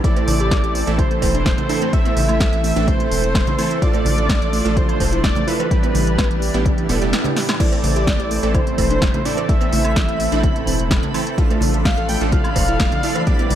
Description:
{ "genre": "progressive house", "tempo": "127 BPM", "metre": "4/4", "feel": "straight", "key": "A minor", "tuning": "A4 = 440 Hz", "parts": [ { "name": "wide unison lead", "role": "melody", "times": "0.0-13.6 s", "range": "B4 to G5", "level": "-24 LUFS", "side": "equal", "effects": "tape echo" }, { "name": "lush unison pad", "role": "sustained chords", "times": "0.0-13.6 s", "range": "E3 to D4", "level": "-27 LUFS", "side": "equal", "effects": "chorus, sidechain pumping" }, { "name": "soft round pluck", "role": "arpeggios", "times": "0.0-13.6 s", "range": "E3 to A4", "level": "-27 LUFS", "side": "equal", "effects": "chorus, sidechain pumping, tape echo" }, { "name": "supersaw stab", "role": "stabs", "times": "0.0-13.6 s", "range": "A2 to A4", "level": "-24 LUFS", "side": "right 4 dB", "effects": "cassette tape, sidechain pumping, tape echo" }, { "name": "deep house drum kit", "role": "drums", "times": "0.0-13.6 s", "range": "crash cymbal, hi-hat, snare drum", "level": "-24 LUFS", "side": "equal", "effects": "none" }, { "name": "electronic kick drum", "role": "drums", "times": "0.0-13.4 s", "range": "none", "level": "-19 LUFS", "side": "equal", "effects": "none" }, { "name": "cowbell, congas and woodblock", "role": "percussion", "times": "0.2-13.6 s", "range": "none", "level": "-28 LUFS", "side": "right 2 dB", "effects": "sidechain pumping on perc" }, { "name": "saturated sub bass", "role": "bass", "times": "0.3-13.6 s", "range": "E1 to A1", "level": "-22 LUFS", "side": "equal", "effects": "sidechain pumping" }, { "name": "backwards swelling texture", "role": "texture", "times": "8.8-13.6 s", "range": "B5", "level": "-34 LUFS", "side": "right 2 dB", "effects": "built-in reverb, ensemble chorus, sidechain pumping" } ], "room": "light reverb", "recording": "none", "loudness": "-15 LUFS", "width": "side -11 dB against mid", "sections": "0.0-13.6 A section", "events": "kick drops out 7.1-7.6; drum fill 7.4", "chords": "0.0 Am; 3.8 Dm/A; 5.7 Em7/A; 7.6 Am; 11.4 Dm/A" }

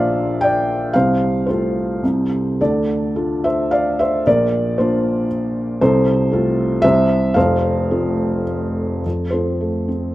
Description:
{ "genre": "classical, lyrical solo piano", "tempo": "102-119 BPM", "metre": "3/4", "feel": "rubato", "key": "F major", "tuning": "A4 = 440 Hz", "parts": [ { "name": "felt-muted upright piano", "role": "solo", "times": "0.0-10.1 s", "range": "F1 to G5", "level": "-16 LUFS", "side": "equal", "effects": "none" } ], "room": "light reverb", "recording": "close, detailed microphones", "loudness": "-16 LUFS", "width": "side -16 dB against mid", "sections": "0.0-9.0 A section; 9.0-10.1 B section", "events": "none", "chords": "0.0 Bb; 0.9 F/C; 2.0 Am/C; 2.6 Dm; 4.3 Bb; 5.8 F/C; 6.8 N.C.; 7.4 F" }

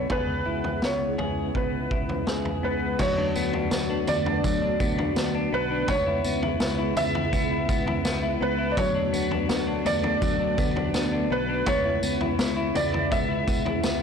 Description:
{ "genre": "dream pop", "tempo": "83 BPM", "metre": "4/4", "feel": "straight", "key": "D lydian", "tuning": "A4 = 445 Hz", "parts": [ { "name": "felt-muted upright piano", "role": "melody", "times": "0.0-14.0 s", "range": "B4 to E5", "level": "-28 LUFS", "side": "right 2 dB", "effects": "ping-pong delay" }, { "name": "soft string machine", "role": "sustained chords", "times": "0.0-14.0 s", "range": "C#3 to F#4", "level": "-32 LUFS", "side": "right 1 dB", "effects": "ensemble chorus" }, { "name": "semi-hollow electric guitar", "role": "arpeggios", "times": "0.0-14.0 s", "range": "F#3 to A4", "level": "-28 LUFS", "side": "left 6 dB", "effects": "lush chorus, ping-pong delay" }, { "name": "fingered electric bass", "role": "bass", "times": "0.0-14.0 s", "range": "B1 to D2", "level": "-32 LUFS", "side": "equal", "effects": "transformer saturation" }, { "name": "vintage drum kit", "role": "drums", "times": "0.1-14.0 s", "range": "crash cymbal, kick drum, snare drum, tambourine, toms", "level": "-29 LUFS", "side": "right 1 dB", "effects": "none" } ], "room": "moderate plate reverb, RT60 1.7 s, studio reverb", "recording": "blown-out, overdriven recording, overdrive", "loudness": "-23 LUFS", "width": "side -6 dB against mid", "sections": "0.0-3.0 A section; 3.0-14.0 B section", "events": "none", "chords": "0.1 C#m7; 3.0 D6; 5.9 C#m7; 8.8 D6; 11.7 C#m7" }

